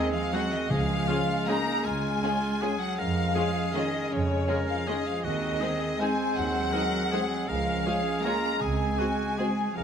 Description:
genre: classical, orchestral ballroom waltz.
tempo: 159 BPM.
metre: 3/4.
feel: uneven beats, rubato.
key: Db major.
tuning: A4 = 441 Hz.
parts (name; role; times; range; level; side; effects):
rich studio violin section; melody; 0.0-9.8 s; Db5 to Bb5; -32 LUFS; left 4 dB; none.
clear clarinet; second line; 0.0-9.8 s; C4 to Db4; -36 LUFS; left 1 dB; none.
clear oboe; second line; 0.0-9.8 s; Eb4 to C5; -36 LUFS; right 1 dB; none.
mellow hollow large flute ensemble; second line; 0.0-9.8 s; Db5 to Bb5; -34 LUFS; equal; none.
mellow bassoon; accompaniment; 0.0-9.8 s; Ab3; -34 LUFS; right 1 dB; none.
mellow French horn section; sustained chords; 0.0-9.5 s; Ab3 to Db4; -38 LUFS; left 4 dB; none.
rich studio cello section; bass; 0.0-9.8 s; Db3 to Bb3; -33 LUFS; right 2 dB; none.
warm studio violin section; second line; 0.3-9.5 s; Eb4 to Db5; -39 LUFS; left 4 dB; none.
rich studio viola section; accompaniment; 0.3-9.5 s; Ab3 to Gb4; -37 LUFS; right 2 dB; none.
rich studio double bass section; bass; 0.7-9.8 s; Db2 to F2; -34 LUFS; right 3 dB; none.
timpani; percussion; 0.7-1.2, 8.6-9.1 s; Db3; -34 LUFS; left 1 dB; none.
room: moderate concert hall reverb, RT60 1.9 s.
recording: none.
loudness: -25 LUFS.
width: side -7 dB against mid.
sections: 0.0-9.8 A section.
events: none.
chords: 0.0 Ab7/Eb; 0.7 Db; 3.0 Db/F; 5.2 Ab7/Eb; 7.5 Db; 8.6 Ab7/Db.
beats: 0.33 | 0.71 1.08 1.48 | 1.85 2.23 2.62 | 2.98 3.36 3.75 | 4.12 4.49 4.88 | 5.24 5.61 6.00 | 6.36 6.73 7.12 | 7.49 7.86 8.24 | 8.61 8.99 9.38 | 9.76.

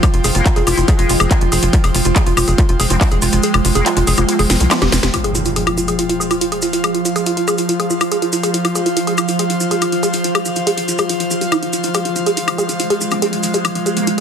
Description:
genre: psychedelic trance.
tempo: 141 BPM.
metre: 4/4.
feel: straight.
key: F minor.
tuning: A4 = 440 Hz.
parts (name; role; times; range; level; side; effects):
evolving wavetable pad; sustained chords; 0.0-14.2 s; F3 to F4; -21 LUFS; right 2 dB; chorus, built-in reverb, sidechain pumping.
woody wave-folded pluck; riff; 0.0-14.2 s; E4 to Ab4; -20 LUFS; moving between equal and right 6 dB; chorus, auto-pan, sidechain pumping, tape echo.
electronic kick drum; drums; 0.0-3.1 s; none; -15 LUFS; equal; distortion, small room ambience.
techno drum kit; drums; 0.0-14.2 s; handclaps, hi-hat, snare drum, woodblock; -20 LUFS; left 3 dB; small room ambience, soft clipping on snare.
maracas; percussion; 0.0-14.2 s; none; -25 LUFS; right 1 dB; none.
airy breathy pad; texture; 0.0-14.2 s; F4 to G5; -24 LUFS; left 2 dB; chorus, sidechain pumping.
tight sequencer bass; bass; 0.1-5.1 s; F1 to C2; -17 LUFS; equal; none.
vowel-sweep wobble bass; second line; 0.3-4.4, 13.1-14.1 s; Ab3 to E4; -27 LUFS; left 5 dB; lush chorus, sidechain pumping, high-pass filter, tape echo.
impact; sound effects; 5.1-6.8 s; none; -24 LUFS; equal; none.
room: light reverb.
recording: dense, heavily limited modern master.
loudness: -13 LUFS.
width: side -7 dB against mid.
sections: 0.0-5.1 A section; 5.1-14.2 B section.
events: kick drops out 3.4-5.1; drum fill 4.5-5.1; impact 5.1-6.8.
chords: 0.0 F5.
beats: | 0.03 0.46 0.88 1.31 | 1.73 2.16 2.58 3.01 | 3.44 3.86 4.29 4.71 | 5.14 5.56 5.99 6.41 | 6.84 7.26 7.69 8.12 | 8.54 8.97 9.39 9.82 | 10.24 10.67 11.09 11.52 | 11.95 12.37 12.80 13.22 | 13.65 14.07.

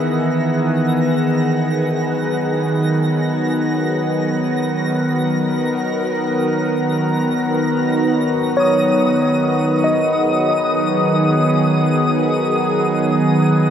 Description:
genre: ambient.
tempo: free time.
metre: none.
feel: none.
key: unclear.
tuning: A4 = 442 Hz.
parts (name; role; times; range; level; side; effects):
evolving wavetable pad; sustained chords; 0.0-13.7 s; D#3 to F#5; -16 LUFS; equal; phaser, built-in reverb.
barky tine electric piano; arpeggios; 0.0-1.3, 8.6-13.7 s; C#5 to E5; -22 LUFS; equal; medium stereo tremolo, diffuse ambient delay.
twinkling granular texture; texture; 0.0-13.7 s; D#6 to A#6; -26 LUFS; left 2 dB; built-in reverb.
room: wet shimmer reverb, RT60 6.8 s.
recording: none.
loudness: -15 LUFS.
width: side -8 dB against mid.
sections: 0.0-8.1 A section; 8.1-13.7 B section.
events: none.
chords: 0.0 Emaj7; 1.3 Bmaj7; 8.1 G#m7.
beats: free time.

